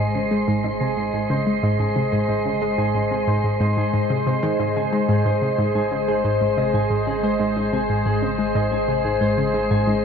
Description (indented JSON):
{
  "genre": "ambient, sequencer-driven space music",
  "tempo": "91 BPM",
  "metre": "4/4",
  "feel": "straight",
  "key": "Ab major",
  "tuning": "A4 = 443 Hz",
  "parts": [
    { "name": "evolving wavetable pad", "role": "sustained chords", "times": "0.0-10.0 s", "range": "Ab3 to Eb5", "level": "-22 LUFS", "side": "left 1 dB", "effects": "chorus, built-in reverb" },
    { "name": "concert harp", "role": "arpeggios", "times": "0.0-10.0 s", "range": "Ab4 to Ab5", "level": "-28 LUFS", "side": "right 1 dB", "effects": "auto-pan, low-pass filter, tape echo" },
    { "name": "analog pluck", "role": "riff", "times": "0.0-9.9 s", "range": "Ab2 to Ab3", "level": "-22 LUFS", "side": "equal", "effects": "chorus, tape echo" },
    { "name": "round analog bass", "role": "bass", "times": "0.0-10.0 s", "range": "Ab1", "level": "-39 LUFS", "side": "equal", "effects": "none" },
    { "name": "wind-like tuned noise texture", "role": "texture", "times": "0.0-10.0 s", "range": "C6", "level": "-32 LUFS", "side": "right 2 dB", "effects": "built-in reverb" }
  ],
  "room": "wet huge ambient reverb, RT60 7.0 s",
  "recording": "none",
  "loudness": "-18 LUFS",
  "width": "side -6 dB against mid",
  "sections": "0.0-10.0 A section",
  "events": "fade-in on analog synth bass 0.0-10.0; filter sweep on harp 0.0-10.0",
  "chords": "0.0 Ab"
}